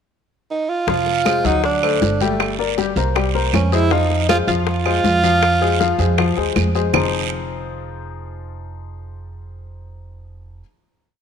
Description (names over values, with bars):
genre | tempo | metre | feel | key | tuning
Afro-Cuban jazz | 158 BPM | 4/4 | straight | F minor | A4 = 439 Hz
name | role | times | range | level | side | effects
breathy tenor saxophone | melody | 0.5-6.5 s | A3 to F4 | -19 LUFS | right 4 dB | none
warm upright piano | accompaniment | 0.9-10.6 s | F3 to G5 | -22 LUFS | left 10 dB | none
upright bass | bass | 0.9-10.6 s | F1 to F2 | -22 LUFS | right 2 dB | none
bongos | percussion | 0.9-7.0 s | none | -26 LUFS | left 12 dB | none
congas | percussion | 0.9-7.0 s | none | -26 LUFS | right 1 dB | none
guiro | percussion | 0.9-7.0 s | none | -29 LUFS | right 15 dB | none
claves | percussion | 1.3-7.0 s | none | -26 LUFS | right 14 dB | none
room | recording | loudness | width
moderate echo chamber reverb, RT60 2.0 s, small room reverb | 1960s-style stereo with parts hard left and right | -15 LUFS | side -7 dB against mid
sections
0.0-0.9 pickup bar; 0.9-6.9 A section; 6.9-10.0 final chord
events
none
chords
0.0 N.C.; 0.9 Fm; 1.6 D7; 2.4 Gm; 3.2 C5; 3.9 Fm; 6.9 Fm7